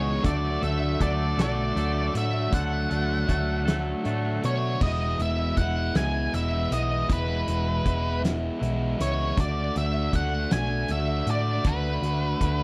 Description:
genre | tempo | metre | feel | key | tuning
indie rock | 53 BPM (dotted quarters) | 6/8 | straight | unclear | A4 = 439 Hz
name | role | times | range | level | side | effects
octave-fuzz lead guitar | melody | 0.0-12.6 s | B4 to G#5 | -32 LUFS | equal | distortion, slapback echo
overdriven electric guitar | riff | 0.0-12.6 s | E2 to G#4 | -32 LUFS | equal | spring reverb
twangy electric guitar | riff | 0.0-4.8 s | D3 to A4 | -35 LUFS | equal | lush chorus, slapback echo
hollow-body short-scale picked electric bass | bass | 0.0-12.6 s | E1 to B2 | -30 LUFS | equal | none
loose indie drum kit | drums | 0.2-12.6 s | crash cymbal, hi-hat, kick drum, snare drum | -30 LUFS | equal | none
room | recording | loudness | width
studio reverb | none | -26 LUFS | mono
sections
0.0-4.8 A section; 4.8-12.6 A section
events
none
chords
0.3 D; 4.8 E; 9.4 D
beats
| 0.26 1.40 | 2.54 3.68 | 4.82 5.96 | 7.10 8.24 | 9.38 10.51 | 11.65

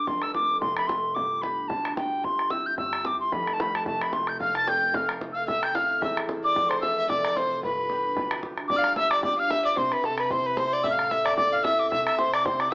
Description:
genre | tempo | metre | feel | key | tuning
celtic folk, Celtic reel | 223 BPM | 4/4 | swing 55% on 8ths | unclear | A4 = 440 Hz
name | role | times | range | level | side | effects
wooden whistle | melody | 0.0-12.7 s | G5 to A6 | -25 LUFS | equal | none
concert harp | accompaniment | 0.0-12.7 s | F1 to A4 | -34 LUFS | equal | none
bodhran | percussion | 0.1-12.7 s | none | -32 LUFS | equal | none
dark fiddle | second line | 4.4-12.7 s | A4 to A5 | -28 LUFS | equal | none
room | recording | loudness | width
moderate studio reverb, RT60 0.6 s | AM radio sound | -23 LUFS | side -26 dB against mid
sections
0.1-8.7 A section; 8.7-12.7 B section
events
none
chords
0.1 F; 1.2 G; 2.2 C/G; 3.3 Fadd9; 5.5 Am; 6.6 F; 7.6 G; 9.8 C; 10.8 Am; 11.9 C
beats
| 0.07 0.34 0.61 0.88 | 1.16 1.43 1.70 1.97 | 2.24 2.51 2.78 3.05 | 3.32 3.59 3.86 4.13 | 4.40 4.67 4.94 5.21 | 5.48 5.75 6.02 6.29 | 6.55 6.82 7.09 7.36 | 7.63 7.90 8.17 8.43 | 8.70 8.97 9.24 9.51 | 9.77 10.04 10.31 10.58 | 10.84 11.11 11.38 11.64 | 11.91 12.18 12.45 12.71

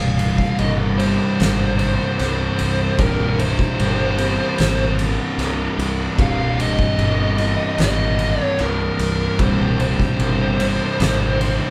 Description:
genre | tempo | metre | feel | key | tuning
stoner and doom metal | 75 BPM | 4/4 | straight | C minor | A4 = 441 Hz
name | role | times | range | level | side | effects
fuzz lead guitar | melody | 0.0-11.7 s | Bb4 to F5 | -26 LUFS | equal | distortion
thick fuzz guitar | riff | 0.0-11.7 s | C2 to C3 | -26 LUFS | equal | distortion
thick fuzz guitar | riff | 0.0-11.7 s | C2 to C3 | -27 LUFS | equal | distortion
fuzz fingered electric bass | bass | 0.0-11.6 s | C1 to C2 | -26 LUFS | equal | overdrive, tube saturation
oversized low-tuned drum kit | drums | 0.2-11.6 s | kick drum, ride cymbal, snare drum | -24 LUFS | equal | none
room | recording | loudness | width
moderate large studio reverb, RT60 0.8 s | band playing live in one room | -19 LUFS | mono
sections
0.0-11.7 A section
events
none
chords
0.0 C5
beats
0.58 1.38 2.18 | 2.98 3.78 4.58 5.38 | 6.19 6.99 7.79 8.59 | 9.39 10.19 11.00

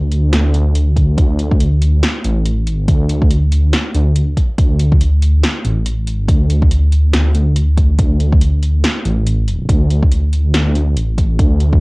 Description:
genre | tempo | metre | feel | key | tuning
deep dubstep | 141 BPM | 4/4 | swing 58% on 16ths, half-time | unclear | A4 = 440 Hz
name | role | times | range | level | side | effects
dark detuned saw bass | bass | 0.0-11.8 s | A1 to D2 | -13 LUFS | equal | tube saturation
deep house drum kit | drums | 0.1-11.7 s | hi-hat, snare drum | -20 LUFS | equal | overdrive, cassette tape
electronic kick drum | drums | 1.0-11.8 s | none | -13 LUFS | equal | overdrive, cassette tape
room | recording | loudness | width
little or no reverb | home recording on cassette | -12 LUFS | side -27 dB against mid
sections
0.0-11.8 A section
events
none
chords
none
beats
0.33 0.75 | 1.18 1.60 2.03 2.46 | 2.88 3.31 3.73 4.16 | 4.58 5.01 5.43 5.86 | 6.29 6.71 7.14 7.56 | 7.99 8.41 8.84 9.26 | 9.69 10.12 10.54 10.97 | 11.39

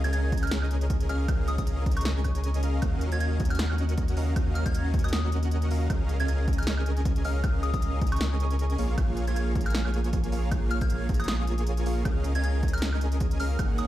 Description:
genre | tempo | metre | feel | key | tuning
future bass | 156 BPM | 4/4 | swing 55% on 16ths, half-time | Db major | A4 = 440 Hz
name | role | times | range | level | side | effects
soft synth bell | melody | 0.0-13.9 s | Db6 to Ab6 | -36 LUFS | equal | chorus, phaser, sidechain pumping, ping-pong delay
dense compressed supersaw | riff | 0.0-13.9 s | Bb3 to Bb5 | -33 LUFS | right 1 dB | sidechain pumping, digital delay
saturated sub bass | bass | 0.0-13.9 s | Ab1 to Eb2 | -27 LUFS | equal | sidechain pumping
big-room dance drum kit | drums | 0.0-13.9 s | hi-hat, snare drum, woodblock | -35 LUFS | equal | none
electronic kick drum | drums | 0.3-13.7 s | none | -28 LUFS | equal | none
room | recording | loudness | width
little or no reverb | played on a big sound system in a bare room, large studio reverb | -24 LUFS | side -14 dB against mid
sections
0.0-13.9 A section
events
none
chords
0.0 Db69; 2.8 Ebm9; 5.9 Db69; 8.8 Bbm7; 12.1 Db69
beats
0.13 0.52 0.90 | 1.28 1.67 2.06 2.44 | 2.82 3.21 3.59 3.98 | 4.36 4.75 5.13 5.52 | 5.90 6.29 6.67 7.05 | 7.44 7.82 8.21 8.59 | 8.98 9.36 9.75 10.13 | 10.52 10.90 11.29 11.67 | 12.05 12.44 12.82 13.21 | 13.59

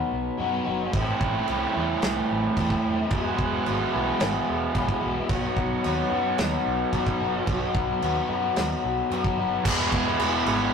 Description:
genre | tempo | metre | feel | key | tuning
rock, shoegaze and dream pop | 110 BPM | 4/4 | straight | E major | A4 = 440 Hz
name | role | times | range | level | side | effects
electric guitar through a small old amp | arpeggios | 0.0-10.7 s | F#3 to B4 | -35 LUFS | left 1 dB | none
cranked stack guitar | riff | 0.0-10.7 s | E2 to F#4 | -28 LUFS | right 4 dB | overdrive
overdriven semi-hollow guitar | riff | 0.0-10.7 s | E2 to F#4 | -26 LUFS | left 4 dB | none
vintage muted fingered electric bass | bass | 0.1-10.7 s | E1 to F#2 | -33 LUFS | right 1 dB | none
loose indie drum kit | drums | 0.9-10.6 s | crash cymbal, kick drum, snare drum | -29 LUFS | right 1 dB | none
room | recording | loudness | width
wet studio reverb, RT60 0.5 s | rough rehearsal-room recording, tube saturation | -22 LUFS | side -6 dB against mid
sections
0.0-9.6 A section; 9.6-10.7 B section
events
none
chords
0.0 B; 0.9 Amadd9; 3.1 Eadd9; 5.3 B; 9.6 E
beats
0.38 | 0.93 1.47 2.02 2.56 | 3.11 3.65 4.20 4.74 | 5.29 5.83 6.38 6.92 | 7.47 8.01 8.56 9.10 | 9.64 10.19 10.73

